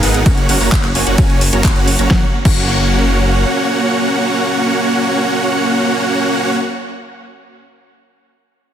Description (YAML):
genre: EDM, festival progressive house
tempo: 130 BPM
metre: 4/4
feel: straight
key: F# major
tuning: A4 = 440 Hz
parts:
  - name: supersaw chords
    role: riff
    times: 0.0-6.6 s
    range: A#3 to A#5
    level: -15 LUFS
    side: right 1 dB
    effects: sidechain pumping, tape echo
  - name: detuned saw bass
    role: bass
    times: 0.0-3.5 s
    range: F#1 to G#1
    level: -17 LUFS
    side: equal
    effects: sidechain pumping
  - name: pop drum kit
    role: drums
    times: 0.0-2.6 s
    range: crash cymbal, handclaps, hi-hat, ride cymbal, snare drum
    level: -19 LUFS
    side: equal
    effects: overdrive
  - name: electronic kick drum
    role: drums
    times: 0.3-2.6 s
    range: none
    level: -14 LUFS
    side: equal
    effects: overdrive
room: moderate recital hall reverb, RT60 1.7 s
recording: dense, heavily limited modern master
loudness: -12 LUFS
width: side -10 dB against mid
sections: 0.0-2.1 A section; 2.1-5.8 B section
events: drop 0.0-2.1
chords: 0.3 F#